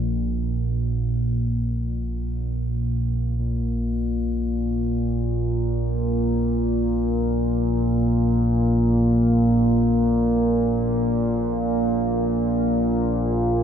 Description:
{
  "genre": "ambient",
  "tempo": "free time",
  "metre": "none",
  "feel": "none",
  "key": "unclear",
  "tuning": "A4 = 440 Hz",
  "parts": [
    { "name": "analog drone", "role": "solo", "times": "0.0-13.6 s", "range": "Bb1 to Bb2", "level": "-20 LUFS", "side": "equal", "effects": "chorus, ping-pong delay" }
  ],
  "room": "wet huge ambient reverb, RT60 7.9 s",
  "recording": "in a vast, echoing space",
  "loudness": "-20 LUFS",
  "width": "side -8 dB against mid",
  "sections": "0.0-3.4 A section; 3.4-13.6 B section",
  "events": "none",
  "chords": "none"
}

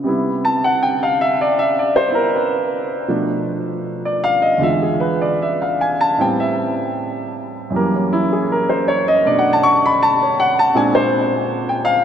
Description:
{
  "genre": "solo jazz",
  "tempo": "79 BPM",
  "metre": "4/4",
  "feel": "swing 69% on 8ths, rubato",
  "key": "unclear",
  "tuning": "A4 = 442 Hz",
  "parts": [
    { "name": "warm grand piano", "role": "solo", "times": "0.0-12.0 s", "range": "E2 to C#6", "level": "-15 LUFS", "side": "equal", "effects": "none" }
  ],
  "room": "wet cathedral reverb, RT60 5.2 s",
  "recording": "recorded in a church or concert hall",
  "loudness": "-15 LUFS",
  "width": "side -8 dB against mid",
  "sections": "0.0-12.0 A section",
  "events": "grand piano solo 0.0-12.0",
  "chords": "0.1 Cmaj7; 3.1 Bm7b5; 4.6 E7b9; 6.2 Am9; 7.7 F#7b9; 9.3 Bm9; 10.8 Bb9"
}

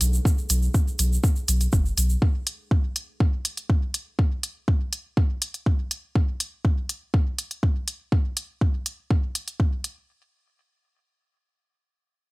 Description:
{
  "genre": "dub techno",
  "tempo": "122 BPM",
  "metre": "4/4",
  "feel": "straight",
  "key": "B dorian",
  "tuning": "A4 = 441 Hz",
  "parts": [
    { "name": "deep dark ambient pad", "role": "sustained chords", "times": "0.0-2.2 s", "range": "D4 to B4", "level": "-48 LUFS", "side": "right 1 dB", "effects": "chorus, built-in reverb, sidechain pumping" },
    { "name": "soft dub sub bass", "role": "bass", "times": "0.0-2.2 s", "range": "F#1 to B1", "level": "-22 LUFS", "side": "equal", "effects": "sidechain pumping" },
    { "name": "electronic hi-hat", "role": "drums", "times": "0.0-9.9 s", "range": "none", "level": "-26 LUFS", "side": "equal", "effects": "small room ambience" },
    { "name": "egg shaker", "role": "percussion", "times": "0.0-2.2 s", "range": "none", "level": "-30 LUFS", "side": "right 3 dB", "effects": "none" },
    { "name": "electronic kick drum", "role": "drums", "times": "0.3-9.7 s", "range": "none", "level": "-21 LUFS", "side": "equal", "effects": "small room ambience" }
  ],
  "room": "digital ambience",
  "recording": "none",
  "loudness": "-22 LUFS",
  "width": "side -23 dB against mid",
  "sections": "0.0-10.1 A section; 10.1-12.3 B section",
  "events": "none",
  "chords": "0.0 Bm; 2.2 N.C."
}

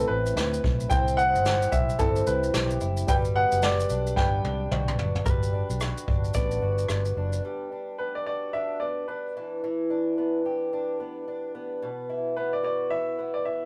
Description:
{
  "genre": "acoustic pop",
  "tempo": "110 BPM",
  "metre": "4/4",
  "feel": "swing 60% on 16ths",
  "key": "G major",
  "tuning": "A4 = 441 Hz",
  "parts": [
    { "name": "bright upright piano", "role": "melody", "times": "0.0-13.7 s", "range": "A4 to G5", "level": "-30 LUFS", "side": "equal", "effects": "none" },
    { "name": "fingerpicked twelve-string acoustic guitar", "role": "accompaniment", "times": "0.0-13.7 s", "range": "A2 to B4", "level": "-32 LUFS", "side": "equal", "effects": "none" },
    { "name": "overdriven reed electric piano", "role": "accompaniment", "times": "0.0-5.3 s", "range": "F#3 to C5", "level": "-36 LUFS", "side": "equal", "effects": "fast tremolo" },
    { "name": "vintage muted fingered electric bass", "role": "bass", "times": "0.0-7.4 s", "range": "F#1 to D2", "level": "-31 LUFS", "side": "equal", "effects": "none" },
    { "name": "vintage brush drum kit", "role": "drums", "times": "0.3-7.4 s", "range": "kick drum, rim click, shaker, snare drum, toms", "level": "-31 LUFS", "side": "equal", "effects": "none" },
    { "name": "direct-recorded clean electric guitar", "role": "second line", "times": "5.3-7.4 s", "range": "B4 to D5", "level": "-39 LUFS", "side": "equal", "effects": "none" }
  ],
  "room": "light reverb",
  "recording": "rough rehearsal-room recording",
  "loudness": "-27 LUFS",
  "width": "mono",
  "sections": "0.0-5.3 A section; 5.3-7.4 B section; 7.4-13.7 C section",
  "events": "drum fill 4.2-5.3",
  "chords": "0.0 Amadd9; 0.9 C; 3.1 Gmaj7; 9.4 Em7; 11.8 Bsus4"
}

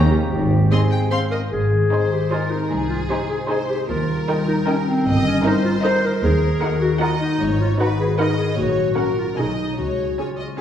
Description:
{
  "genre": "cinematic",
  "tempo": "153 BPM",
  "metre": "3/4",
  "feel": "straight",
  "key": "Ab major",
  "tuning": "A4 = 440 Hz",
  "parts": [
    { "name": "dark clarinet", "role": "second line", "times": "0.0-10.6 s", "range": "C4 to C5", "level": "-22 LUFS", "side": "left 2 dB", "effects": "none" },
    { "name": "dark French horn section", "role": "sustained chords", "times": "0.0-1.3 s", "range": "C4 to G4", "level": "-30 LUFS", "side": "right 1 dB", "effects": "none" },
    { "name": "concert harp", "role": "arpeggios", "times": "0.0-10.6 s", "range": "G2 to D#5", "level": "-24 LUFS", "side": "left 2 dB", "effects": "none" },
    { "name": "clear tuba", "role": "bass", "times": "0.0-0.7 s", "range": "Ab1 to Eb2", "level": "-27 LUFS", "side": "right 1 dB", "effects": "none" },
    { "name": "rich studio cello section", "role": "bass", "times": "0.0-10.1 s", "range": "C2 to C#3", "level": "-28 LUFS", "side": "right 2 dB", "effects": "none" },
    { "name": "rich studio double bass section", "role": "bass", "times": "0.0-10.1 s", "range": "G1 to Eb2", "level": "-24 LUFS", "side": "right 1 dB", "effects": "none" },
    { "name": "mellow hollow concert flute", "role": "second line", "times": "0.1-1.1 s", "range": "G5 to Ab5", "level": "-33 LUFS", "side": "right 1 dB", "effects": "none" },
    { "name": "rich studio violin section", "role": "melody", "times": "0.7-10.5 s", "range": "Eb5 to C6", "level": "-33 LUFS", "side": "left 2 dB", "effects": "none" },
    { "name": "rich studio violin section", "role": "second line", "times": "0.7-10.6 s", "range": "Ab4 to G5", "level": "-28 LUFS", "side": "equal", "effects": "none" },
    { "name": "rich studio viola section", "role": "accompaniment", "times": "0.7-10.5 s", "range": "C4 to C5", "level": "-28 LUFS", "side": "right 2 dB", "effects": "none" }
  ],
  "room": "wet scoring stage reverb, RT60 1.8 s",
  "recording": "heard from further back in the room",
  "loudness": "-17 LUFS",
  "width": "side -9 dB against mid",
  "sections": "0.0-1.5 A section; 1.5-10.6 B section",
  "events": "none",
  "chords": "0.3 Ab; 2.7 Ab/C; 3.9 Eb; 5.1 Eb/G; 6.2 D#m; 7.4 G#m7; 8.6 F#/A#; 9.4 G#m/B; 9.8 C#"
}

